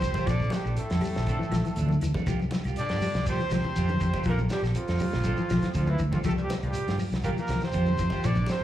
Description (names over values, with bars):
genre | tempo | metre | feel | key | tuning
afrobeat | 120 BPM | 4/4 | straight | C mixolydian | A4 = 440 Hz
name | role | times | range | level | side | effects
breathy trumpet | melody | 0.0-8.6 s | E4 to D5 | -33 LUFS | equal | slapback echo
bright baritone saxophone | second line | 0.0-8.6 s | E2 to D3 | -40 LUFS | left 2 dB | slapback echo
raspy tenor saxophone | second line | 0.0-8.6 s | E3 to D4 | -38 LUFS | right 4 dB | slapback echo
semi-hollow electric guitar | arpeggios | 0.0-8.4 s | D3 to G3 | -32 LUFS | left 4 dB | phaser, slapback echo
clean electric guitar | stabs | 0.0-8.5 s | F3 to A4 | -38 LUFS | right 8 dB | spring reverb, slapback echo
fingered electric bass | bass | 0.0-8.6 s | Bb1 to G2 | -28 LUFS | equal | none
warm soul drum kit | drums | 0.0-8.6 s | hi-hat, kick drum, snare drum | -34 LUFS | equal | none
claves | percussion | 0.0-8.4 s | none | -51 LUFS | left 3 dB | none
congas | percussion | 0.0-8.6 s | none | -33 LUFS | right 1 dB | slapback echo
shekere | percussion | 0.0-8.6 s | none | -40 LUFS | left 1 dB | none
room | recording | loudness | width
studio reverb | live gig heard through the venue's PA, club reverb | -24 LUFS | side -12 dB against mid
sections
0.0-8.6 A section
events
none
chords
0.3 Bbmaj9; 2.3 C7sus4; 4.3 Bbmaj9; 6.3 C7sus4